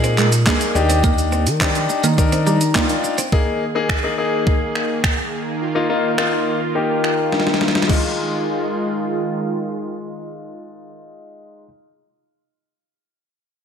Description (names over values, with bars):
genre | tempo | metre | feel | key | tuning
dance-pop | 105 BPM | 4/4 | straight | F dorian | A4 = 440 Hz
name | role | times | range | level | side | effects
bright grand piano | accompaniment | 0.0-11.7 s | Ab3 to Bb5 | -22 LUFS | left 4 dB | sidechain pumping, low-pass filter, slapback echo
twelve-string electric guitar | riff | 0.0-3.3 s | G3 to C4 | -24 LUFS | right 5 dB | lush chorus, slapback echo
chorused synth bass | bass | 0.0-3.0 s | Eb2 to Eb3 | -18 LUFS | right 1 dB | sidechain pumping
crisp 8-bit digital drum machine | drums | 0.0-8.0 s | crash cymbal, finger snaps, handclaps, hi-hat, kick drum, shaker, snare drum | -20 LUFS | equal | overdrive
soft supersaw | sustained chords | 3.3-10.9 s | Eb3 to Ab4 | -23 LUFS | right 2 dB | sidechain pumping, low-pass filter
room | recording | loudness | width
moderate lush hall reverb, RT60 1.7 s, digital ambience | big arena sound | -16 LUFS | side -7 dB against mid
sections
0.0-3.3 A section; 3.3-7.9 B section; 7.9-10.2 C section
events
grand piano fill 2.2-3.3; filter sweep 3.3-7.9; drum fill 7.3-7.9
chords
0.0 Bb7sus4; 0.8 Ebmaj7; 3.3 Absus2; 5.6 Ebsus2; 7.9 Fm7